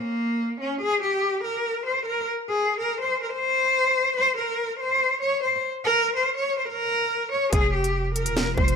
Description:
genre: hip hop, drill.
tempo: 143 BPM.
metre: 4/4.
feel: half-time.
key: F minor.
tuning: A4 = 440 Hz.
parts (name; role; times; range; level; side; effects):
warm cello; melody; 0.0-8.8 s; Bb3 to Db5; -22 LUFS; left 1 dB; tape echo.
deep dark ambient pad; sustained chords; 8.2-8.8 s; C3 to F4; -34 LUFS; right 2 dB; chorus, built-in reverb.
growling 808-style bass; bass; 7.5-8.8 s; Eb1 to F1; -27 LUFS; right 1 dB; none.
drill drum kit; drums; 7.5-8.8 s; hi-hat, kick drum, snare drum; -23 LUFS; equal; none.
room: light reverb, digital ambience.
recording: none.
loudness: -22 LUFS.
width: side -6 dB against mid.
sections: 0.8-8.8 A section.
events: break 0.0-0.8.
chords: 0.0 Bbm; 0.8 N.C.; 7.5 Fm.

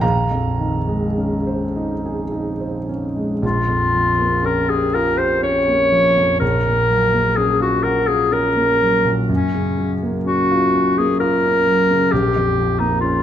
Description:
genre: classical, impressionist duo for clarinet and grand piano.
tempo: 51-66 BPM.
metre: 3/4.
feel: rubato.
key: Bb minor.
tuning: A4 = 440 Hz.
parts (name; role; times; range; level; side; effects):
dark concert grand piano; accompaniment; 0.0-13.2 s; Bb1 to Bb5; -19 LUFS; equal; none.
warm clarinet; melody; 3.4-13.2 s; Db4 to Db5; -16 LUFS; left 1 dB; none.
room: wet recital hall reverb, RT60 1.4 s.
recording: dark, warm production.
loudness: -15 LUFS.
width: side -10 dB against mid.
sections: 0.0-3.4 A section; 3.4-13.2 B section.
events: none.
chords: 0.0 Bbm11; 3.4 Bbm6; 6.4 Bbm; 9.3 Gbmaj7; 12.1 Bbm6.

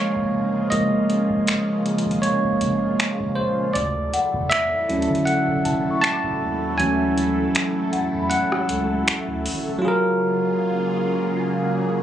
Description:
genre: contemporary R&B.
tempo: 79 BPM.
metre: 4/4.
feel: swing 54% on 16ths.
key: unclear.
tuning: A4 = 440 Hz.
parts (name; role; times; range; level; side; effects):
bell-like tine electric piano; accompaniment; 0.0-12.0 s; E3 to A5; -21 LUFS; right 1 dB; none.
lush unison pad; sustained chords; 0.0-12.0 s; Db3 to A4; -28 LUFS; equal; chorus, phaser.
booming analog drum machine; drums; 0.2-9.6 s; finger snaps, hi-hat, kick drum, rim click; -27 LUFS; equal; none.
warm sub bass; bass; 0.3-9.8 s; Eb1 to D3; -30 LUFS; equal; none.
small celesta; texture; 4.1-9.3 s; F#5 to D6; -29 LUFS; left 3 dB; ping-pong delay.
room: light reverb.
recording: recorded on a phone in the room, club reverb, compression.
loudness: -19 LUFS.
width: side -10 dB against mid.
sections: 0.0-9.8 A section; 9.8-12.0 B section.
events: tine electric piano solo 0.0-9.8; kick muted 6.8-9.8.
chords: 0.0 Gbmaj9; 3.8 Dmaj9; 9.8 Gbmaj9.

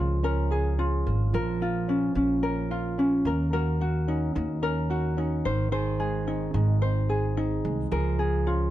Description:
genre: acoustic pop.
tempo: 109 BPM.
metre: 4/4.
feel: straight.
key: Db major.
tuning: A4 = 440 Hz.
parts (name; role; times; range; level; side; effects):
ukulele; accompaniment; 0.0-8.7 s; Db4 to C5; -28 LUFS; left 3 dB; none.
nylon-string guitar; arpeggios; 0.0-8.7 s; Eb3 to Ab4; -31 LUFS; right 7 dB; none.
upright bass; bass; 0.0-8.7 s; Ab1 to Eb2; -27 LUFS; equal; none.
room: light reverb.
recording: dark, warm production.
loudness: -24 LUFS.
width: side -14 dB against mid.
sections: 0.0-8.7 A section.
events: none.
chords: 0.0 Db6; 1.3 Bbm; 3.3 Ebm7; 5.4 Ab; 7.9 Db6.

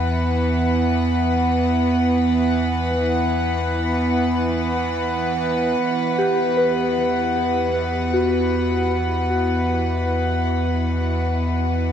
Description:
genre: ambient.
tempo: free time.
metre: none.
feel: none.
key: unclear.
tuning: A4 = 440 Hz.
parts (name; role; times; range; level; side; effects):
warm studio string section; sustained chords; 0.0-11.9 s; E3 to F#5; -20 LUFS; right 1 dB; shimmer reverb.
warm sub bass; bass; 0.0-11.9 s; E2; -25 LUFS; left 1 dB; tube saturation.
hand-pumped harmonium; drone; 0.0-11.9 s; B2 to B3; -32 LUFS; left 1 dB; none.
soft synth bell; arpeggios; 6.2-11.9 s; F#4 to B4; -24 LUFS; left 1 dB; chorus, dub echo, shimmer reverb.
room: wet plate reverb, RT60 3.1 s.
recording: echo-heavy mix.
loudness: -18 LUFS.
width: side -8 dB against mid.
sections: 0.0-5.8 A section; 5.8-11.9 B section.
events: none.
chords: 0.0 E5; 5.8 Em.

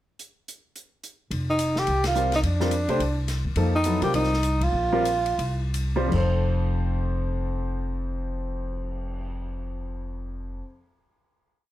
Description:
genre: modal jazz.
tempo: 150-215 BPM.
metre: 4/4.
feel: swing 60% on 8ths.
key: F mixolydian.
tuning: A4 = 440 Hz.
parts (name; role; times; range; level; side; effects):
open jazz drum kit; drums; 0.2-9.2 s; crash cymbal, cymbal swell, hi-hat, kick drum, ride cymbal, snare drum; -35 LUFS; left 2 dB; none.
upright bass; bass; 1.3-10.6 s; F1 to C3; -27 LUFS; equal; none.
breathy tenor saxophone; melody; 1.5-5.8 s; D4 to G4; -24 LUFS; right 1 dB; none.
warm grand piano; accompaniment; 2.2-10.7 s; F2 to C5; -28 LUFS; left 1 dB; none.
room: light reverb.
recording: none.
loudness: -23 LUFS.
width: side -14 dB against mid.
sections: 0.2-1.3 pickup bar; 1.3-6.1 A section; 6.1-9.3 final chord.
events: band accent 2.0, 4.6; slowing down 3.6-6.1.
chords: 0.2 N.C.; 1.3 F9sus4; 6.1 F.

